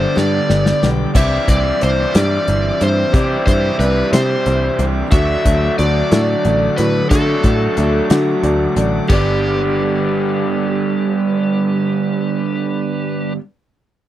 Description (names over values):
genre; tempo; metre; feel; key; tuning
folk rock and heartland rock; 60 BPM (dotted quarters); 6/8; straight; G major; A4 = 440 Hz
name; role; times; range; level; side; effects
overdriven slide guitar; melody; 0.0-13.3 s; G4 to E5; -20 LUFS; equal; none
picked acoustic archtop guitar; accompaniment; 0.0-13.4 s; G2 to A4; -25 LUFS; left 3 dB; none
warm concert grand piano; accompaniment; 0.0-13.4 s; C4 to B5; -29 LUFS; right 2 dB; none
bright tonewheel organ; sustained chords; 0.0-13.3 s; G3 to D6; -29 LUFS; equal; slow rotary speaker, overdrive
raw garage guitar; riff; 0.0-13.4 s; G2 to G4; -19 LUFS; right 2 dB; overdrive
picked electric bass; bass; 0.0-13.3 s; G1 to D3; -18 LUFS; equal; none
natural country drum kit; drums; 0.2-9.3 s; crash cymbal, hi-hat, kick drum, snare drum; -16 LUFS; equal; none
room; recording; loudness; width
little or no reverb; dry, close 1970s-style studio recording; -13 LUFS; side -12 dB against mid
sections
0.0-9.1 A section; 9.1-13.1 B section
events
drum fill 0.2-1.2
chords
0.0 G; 1.2 Cadd9; 5.1 D; 9.1 G